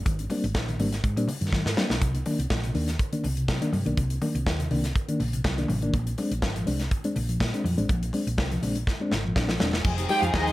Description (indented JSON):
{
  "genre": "disco",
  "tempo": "122 BPM",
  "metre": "4/4",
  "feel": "straight",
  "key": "C minor",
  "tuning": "A4 = 439 Hz",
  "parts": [
    { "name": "hollow-body short-scale fingered electric bass", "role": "bass", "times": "0.0-10.5 s", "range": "E1 to C3", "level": "-29 LUFS", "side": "equal", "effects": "none" },
    { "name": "reed electric piano", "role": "accompaniment", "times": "0.1-10.5 s", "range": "Ab2 to G4", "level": "-29 LUFS", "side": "left 1 dB", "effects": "fast tremolo" },
    { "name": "modern studio drum kit", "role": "drums", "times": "0.1-10.5 s", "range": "crash cymbal, hi-hat, kick drum, snare drum", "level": "-28 LUFS", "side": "equal", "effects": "none" },
    { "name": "congas", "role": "percussion", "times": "0.1-10.5 s", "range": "none", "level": "-36 LUFS", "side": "left 2 dB", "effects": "none" },
    { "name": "warm studio string section", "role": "sustained chords", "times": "9.8-10.5 s", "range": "F3 to Ab4", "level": "-28 LUFS", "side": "left 1 dB", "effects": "none" },
    { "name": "warm symphonic violin section", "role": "second line", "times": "10.1-10.5 s", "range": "Eb4 to G5", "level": "-24 LUFS", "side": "right 2 dB", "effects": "none" }
  ],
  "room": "studio reverb",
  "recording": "none",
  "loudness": "-24 LUFS",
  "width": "side -17 dB against mid",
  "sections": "0.0-9.8 A section",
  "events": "drum fill 1.5-2.0, 8.9-9.8",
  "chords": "0.0 Abmaj9#11; 2.0 Cm7; 5.9 Bb7; 9.8 Fm7"
}